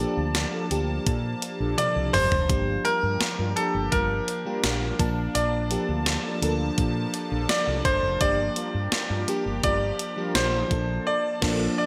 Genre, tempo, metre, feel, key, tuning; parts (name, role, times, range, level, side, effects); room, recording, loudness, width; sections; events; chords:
1980s-style pop; 84 BPM; 4/4; straight; A4 = 444 Hz
bright grand piano; melody; 0.0-11.9 s; A4 to D5; -29 LUFS; equal; digital delay
FM electric piano with soft pad layer; accompaniment; 0.0-11.9 s; F3 to A5; -33 LUFS; equal; chorus
sweeping resonant pad; sustained chords; 0.0-11.9 s; F3 to A5; -37 LUFS; equal; chorus
mellow synth brass; stabs; 0.0-11.7 s; F3 to Bb4; -39 LUFS; equal; chorus
woody fretless electric bass; bass; 0.0-11.7 s; F1 to Bb2; -31 LUFS; equal
clean 12-bit digital drum machine; drums; 0.3-11.7 s; crash cymbal, hi-hat, kick drum, snare drum, toms; -30 LUFS; equal; overdrive, gated reverb
moderate plate reverb, RT60 1.8 s; bright 1980s-style digital production; -25 LUFS; mono
0.0-11.9 A section
drum fill 1.8-2.5; band accent 11.1-11.9
0.0 Bbmaj7; 2.5 Gm7; 5.0 Bbmaj7; 8.2 Gm7; 10.7 Bbmaj7